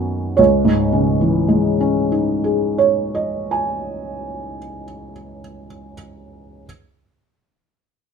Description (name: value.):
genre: neoclassical minimalist piano.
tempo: 59 BPM.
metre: 4/4.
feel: rubato.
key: C# minor.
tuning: A4 = 440 Hz.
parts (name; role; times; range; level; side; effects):
felt-muted upright piano; solo; 0.0-6.7 s; C#2 to G#5; -16 LUFS; right 1 dB; none.
room: light reverb.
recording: band playing live in one room.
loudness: -15 LUFS.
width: side -6 dB against mid.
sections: 0.4-4.5 A section.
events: none.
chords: 0.4 C#madd9.